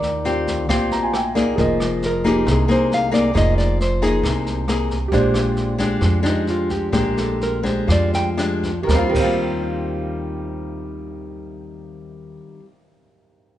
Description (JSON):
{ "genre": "bossa nova", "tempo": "115-136 BPM", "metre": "4/4", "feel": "straight", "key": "Eb major", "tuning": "A4 = 440 Hz", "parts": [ { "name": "nylon-string guitar", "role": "melody", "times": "0.0-8.3 s", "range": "Eb4 to G5", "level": "-23 LUFS", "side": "equal", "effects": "none" }, { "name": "nylon-string guitar", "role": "accompaniment", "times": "0.0-12.7 s", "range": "Bb2 to Ab4", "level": "-21 LUFS", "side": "left 2 dB", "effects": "none" }, { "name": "warm baby grand piano", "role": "accompaniment", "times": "0.0-13.6 s", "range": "F4 to Bb5", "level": "-25 LUFS", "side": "right 4 dB", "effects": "none" }, { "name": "upright bass", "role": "bass", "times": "0.0-12.4 s", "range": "F1 to F2", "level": "-24 LUFS", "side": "equal", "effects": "none" }, { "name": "jazz brush drum kit", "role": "drums", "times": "0.0-9.3 s", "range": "crash cymbal, kick drum, rim click, snare drum", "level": "-27 LUFS", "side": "equal", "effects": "none" } ], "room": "light reverb", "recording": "nothing above 10.4 kHz", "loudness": "-17 LUFS", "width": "side -12 dB against mid", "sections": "0.0-1.6 A section; 1.6-8.9 B section; 8.9-13.0 C section", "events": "grand piano fill 0.7-1.6; nylon-string guitar solo 1.6-8.9; slowing down 5.1-8.9", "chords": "0.0 Eb69; 1.6 Fm7; 5.1 Bb13; 8.9 Eb69" }